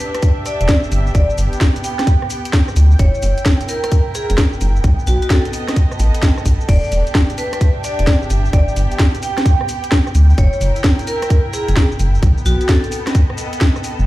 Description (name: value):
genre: UK garage, two-step garage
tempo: 130 BPM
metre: 4/4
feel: swing 65% on 16ths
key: unclear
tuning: A4 = 440 Hz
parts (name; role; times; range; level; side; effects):
- vibraphone with hard mallets; melody; 0.0-13.1 s; F#4 to G5; -23 LUFS; equal; ping-pong delay
- ethereal airy pad; sustained chords; 0.0-14.1 s; G5; -31 LUFS; right 6 dB; ensemble chorus, built-in reverb, sidechain pumping
- clear symphonic string section; texture; 0.0-14.1 s; B3 to G5; -28 LUFS; equal; sidechain pumping
- garage drum kit; drums; 0.1-14.1 s; crash cymbal, hi-hat, rim click, shaker, snare drum; -21 LUFS; equal; overdrive
- electronic kick drum; drums; 0.2-13.7 s; none; -14 LUFS; equal; overdrive
- rubbery square bass; bass; 0.6-14.1 s; E1 to D2; -13 LUFS; equal; none
room: little or no reverb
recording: played on a big sound system in a bare room, large studio reverb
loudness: -13 LUFS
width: side -17 dB against mid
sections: 0.0-14.1 A section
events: none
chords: 0.0 Em7; 0.9 G; 3.0 F#7; 4.8 B7; 6.7 Em7; 8.3 G; 10.4 F#7; 12.2 B7